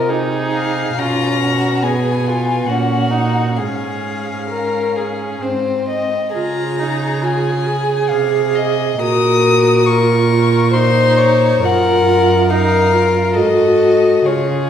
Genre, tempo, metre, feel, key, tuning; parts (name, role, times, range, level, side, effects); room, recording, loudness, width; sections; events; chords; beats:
classical, slow romantic movement for string quartet; 62-72 BPM; 3/4; rubato; Db major; A4 = 442 Hz
rich violin; melody; 0.0-14.7 s; Db5 to Eb6; -20 LUFS; left 4 dB
warm violin; second line; 0.0-14.7 s; F4 to Eb5; -18 LUFS; left 3 dB
warm viola; accompaniment; 0.0-14.7 s; Cb4 to Ab4; -18 LUFS; right 2 dB
rich cello; bass; 0.0-14.7 s; Gb2 to Db3; -20 LUFS; right 3 dB
wet recital hall reverb, RT60 1.4 s; heard from further back in the room; -13 LUFS; side -9 dB against mid
0.0-14.7 A section
0.0 Ab/C; 1.0 Db7/Cb; 2.7 Gb/Bb; 3.6 Db/Ab; 5.4 Ab; 6.3 Db; 9.0 Gb/Bb; 11.7 Gbmaj7; 12.5 Ebm/Gb; 13.4 Ab5
0.11 | 1.00 1.84 2.69 | 3.58 4.51 5.42 | 6.35 7.24 8.10 | 9.03 9.88 10.73 | 11.65 12.50 13.36 | 14.28